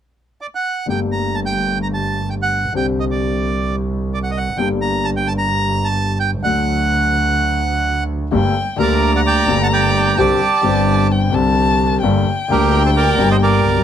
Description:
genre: tango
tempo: 129 BPM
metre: 4/4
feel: rubato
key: G harmonic minor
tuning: A4 = 440 Hz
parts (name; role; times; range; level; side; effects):
- bandoneon; melody; 0.4-13.8 s; G4 to Bb5; -19 LUFS; right 4 dB; none
- warm concert grand piano; accompaniment; 0.9-13.8 s; G1 to G4; -19 LUFS; left 4 dB; none
- clear double bass; bass; 0.9-13.8 s; G1 to D2; -20 LUFS; right 2 dB; none
- warm violin; second line; 8.3-13.8 s; G5 to Bb5; -20 LUFS; left 4 dB; none
room: light reverb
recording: close, detailed microphones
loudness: -14 LUFS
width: side -9 dB against mid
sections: 0.9-8.3 A section; 8.3-13.8 B section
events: none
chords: 0.0 N.C.; 0.9 Gmadd9; 2.7 Csus2; 4.6 Gm; 6.5 D; 8.3 Gmadd9; 10.2 Csus2; 12.0 Gm

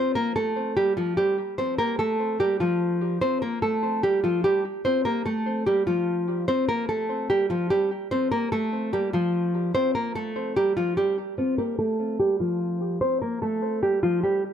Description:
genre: hip hop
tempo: 147 BPM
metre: 4/4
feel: half-time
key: unclear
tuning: A4 = 440 Hz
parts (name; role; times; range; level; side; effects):
- nylon-string guitar; solo; 0.0-14.4 s; F3 to C5; -22 LUFS; equal; low-pass filter, tape echo
room: moderate spring reverb, RT60 1.2 s, small room ambience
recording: echo-heavy mix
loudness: -22 LUFS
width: side -8 dB against mid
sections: 0.0-11.4 A section; 11.4-14.5 B section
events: filter sweep on nylon-string guitar 11.4-14.5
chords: 0.0 Fadd9

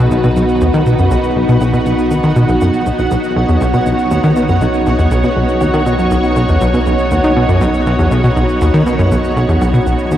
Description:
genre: ambient, sequencer-driven space music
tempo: 120 BPM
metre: 4/4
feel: straight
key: B major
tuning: A4 = 439 Hz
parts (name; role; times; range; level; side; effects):
- string machine, full ensemble; sustained chords; 0.0-10.2 s; B3 to C#5; -15 LUFS; equal; ensemble chorus, cassette tape
- plucky analog bass; riff; 0.0-10.2 s; B1 to D#3; -13 LUFS; equal; cassette tape, tape echo
- warm sub bass; bass; 0.0-10.2 s; B1; -22 LUFS; equal; none
- pulsing gated texture; texture; 0.0-10.2 s; F#5; -23 LUFS; right 4 dB; chorus, built-in reverb, cassette tape
- cabasa and woodblock; percussion; 0.1-10.2 s; none; -34 LUFS; equal; cassette tape, tape echo
room: moderate lush hall reverb, RT60 2.8 s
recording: home recording on cassette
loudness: -10 LUFS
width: side -11 dB against mid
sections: 0.0-10.2 A section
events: none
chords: 0.0 B

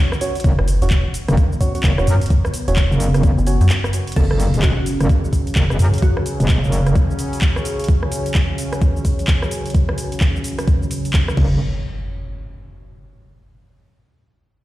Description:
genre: bass house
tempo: 129 BPM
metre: 4/4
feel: swing 62% on 16ths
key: unclear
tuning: A4 = 440 Hz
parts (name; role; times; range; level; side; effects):
- sweeping resonant pad; sustained chords; 0.0-11.6 s; C#3 to C#5; -26 LUFS; equal; chorus, phaser, sidechain pumping
- garage drum kit; drums; 0.1-11.5 s; crash cymbal, handclaps, hi-hat, rim click, shaker; -26 LUFS; equal; overdrive
- percussive organ stab; stabs; 0.2-3.7 s; C#4 to C#5; -27 LUFS; right 2 dB; chorus, sidechain pumping, tape echo
- metallic wobble bass; bass; 0.4-6.9, 11.4-11.6 s; E1 to F#2; -16 LUFS; equal; chorus, overdrive, sidechain pumping
- electronic kick drum; drums; 0.4-11.5 s; none; -16 LUFS; equal; overdrive
- metallic FM bass; bass; 0.6-3.7 s; E1 to F#2; -16 LUFS; equal; tube saturation, sidechain pumping
- glassy wavetable pluck; melody; 4.2-6.7 s; F#4 to A4; -29 LUFS; right 2 dB; chorus, tape echo
- impact; sound effects; 4.2-6.0, 11.4-13.2 s; none; -27 LUFS; equal; none
room: little or no reverb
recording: played on a big sound system in a bare room, large studio reverb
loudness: -15 LUFS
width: side -16 dB against mid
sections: 0.0-4.2 A section; 4.2-11.6 B section; 11.6-13.5 C section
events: drop 0.0-4.2; break 3.7-4.2; impact 4.2-6.0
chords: 0.0 F#5; 11.6 N.C.

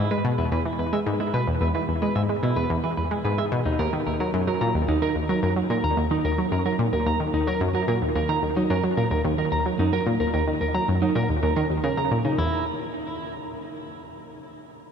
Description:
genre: ambient, sequencer-driven space music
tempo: 110 BPM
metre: 4/4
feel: straight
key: unclear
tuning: A4 = 440 Hz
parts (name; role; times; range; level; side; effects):
- clean electric guitar; arpeggios; 0.0-12.6 s; D#4 to A#5; -27 LUFS; right 2 dB; auto-pan, tape echo, shimmer reverb
- analog pluck; riff; 0.0-12.6 s; D#2 to G#3; -23 LUFS; equal; chorus, tape echo, shimmer reverb
room: wet huge ambient reverb, RT60 8.5 s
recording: cassette tape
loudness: -22 LUFS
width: side -7 dB against mid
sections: 0.0-12.4 A section; 12.4-14.9 B section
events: none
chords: 0.0 E; 3.7 D#m; 12.4 N.C.

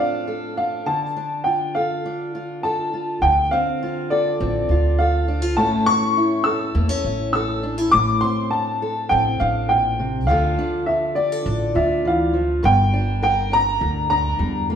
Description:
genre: acoustic folk duo or small band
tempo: 102 BPM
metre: 4/4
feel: straight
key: D minor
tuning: A4 = 441 Hz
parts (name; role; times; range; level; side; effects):
- warm upright piano; melody; 0.0-14.6 s; D5 to E6; -20 LUFS; equal; none
- fingerpicked steel-string acoustic guitar; accompaniment; 0.0-14.8 s; G2 to Bb4; -24 LUFS; equal; none
- upright bass; bass; 3.2-14.8 s; G1 to E2; -23 LUFS; right 1 dB; none
room: wet stone room reverb, RT60 1.3 s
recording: band playing live in one room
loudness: -18 LUFS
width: side -8 dB against mid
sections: 0.0-3.2 A section; 3.2-12.6 A section; 12.6-14.8 B section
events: none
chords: 0.0 Dm7/A; 0.9 Dm; 3.2 Dm7; 5.6 A; 7.9 D5/A; 10.3 Dmadd9; 12.6 Gm

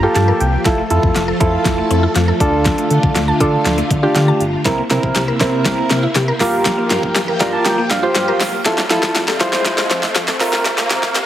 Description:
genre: dance-pop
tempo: 120 BPM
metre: 4/4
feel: straight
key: F major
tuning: A4 = 440 Hz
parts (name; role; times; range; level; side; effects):
- soft electric-piano-like synth keys; accompaniment; 0.0-11.2 s; C4 to Bb5; -17 LUFS; right 1 dB; chorus, tremolo
- string machine, violins; sustained chords; 0.0-11.3 s; C3 to A4; -22 LUFS; equal; ensemble chorus, sidechain pumping
- mallet-like synth pluck; arpeggios; 0.0-11.2 s; F3 to D6; -25 LUFS; left 2 dB; chorus, sidechain pumping, tape echo
- round analog bass; bass; 0.0-11.3 s; F1 to F3; -20 LUFS; equal; sidechain pumping
- pop drum kit; drums; 0.2-11.3 s; hi-hat, kick drum, snare drum; -19 LUFS; equal; none
- riser; sound effects; 6.5-11.3 s; none; -26 LUFS; equal; none
- group handclap; percussion; 5.2-11.3 s; none; -27 LUFS; left 4 dB; none
room: moderate spring reverb, RT60 1.3 s, digital ambience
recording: heavily compressed radio sound, high-pass filter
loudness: -13 LUFS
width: side -12 dB against mid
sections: 0.0-11.3 A section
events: build-up 0.0-11.3; drum fill 0.0-11.3; synth keys fill 0.0-0.7, 7.2-8.7; filter sweep 0.0-11.3; riser 6.5-11.3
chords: 0.0 Gm7; 0.7 Fmaj7; 2.4 Dm; 4.7 C7; 6.4 Gm7; 8.7 Fmaj7; 10.4 C7sus4

